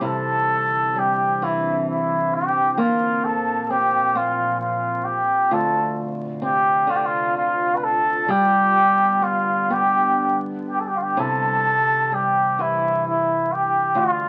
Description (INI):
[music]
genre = celtic folk, Celtic slow air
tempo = 43 BPM (dotted quarters)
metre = 6/8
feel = rubato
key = C major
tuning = A4 = 441 Hz
[part]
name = baroque flute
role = second line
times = 0.0-14.3 s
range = E5 to B5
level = -28 LUFS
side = equal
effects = none
[part]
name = flamenco guitar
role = accompaniment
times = 0.0-14.3 s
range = D2 to G4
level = -30 LUFS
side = equal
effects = none
[part]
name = evolving wavetable pad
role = sustained chords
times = 0.0-14.3 s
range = C2 to F4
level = -35 LUFS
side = equal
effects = chorus, built-in reverb
[part]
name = trumpet with cup mute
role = melody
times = 0.1-14.3 s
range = E4 to B4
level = -22 LUFS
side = equal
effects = none
[sound]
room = moderate studio reverb, RT60 0.6 s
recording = very old 78 rpm record, vinyl crackle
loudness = -20 LUFS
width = mono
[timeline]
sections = 0.0-14.3 A section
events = none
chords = 0.0 Cadd9; 2.8 Bbsus2; 5.5 Dm7; 8.3 G; 11.2 C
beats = | 0.03 1.43 | 2.80 4.16 | 5.51 6.89 | 8.29 9.71 | 11.17 12.59 | 13.97